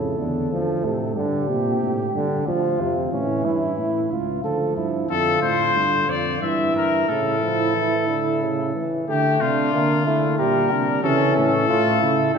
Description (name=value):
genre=classical, imitative canzona for brass ensemble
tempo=92 BPM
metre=3/4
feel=straight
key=D minor from 5.1 s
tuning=A4 = 439 Hz
part: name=dark flugelhorn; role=second line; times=0.0-12.4 s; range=C#4 to A4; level=-24 LUFS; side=right 3 dB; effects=none
part: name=mellow trombone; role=accompaniment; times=0.0-12.4 s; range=C3 to Bb3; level=-25 LUFS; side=equal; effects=none
part: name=mellow tuba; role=bass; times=0.0-12.4 s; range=C#2 to D3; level=-26 LUFS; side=right 2 dB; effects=none
part: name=clear trumpet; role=melody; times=5.1-12.4 s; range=F4 to E5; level=-22 LUFS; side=left 6 dB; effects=none
room=wet concert hall reverb, RT60 2.4 s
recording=heard from further back in the room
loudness=-19 LUFS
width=side -6 dB against mid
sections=0.0-9.1 A section; 9.1-12.4 B section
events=none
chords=0.0 A; 0.5 Dm7; 1.2 Gm; 2.5 Dm; 3.1 A; 4.4 Dm; 5.1 Dm/F; 6.4 Edim/G; 7.1 A; 9.1 Dm; 10.4 Gm/Bb; 11.1 A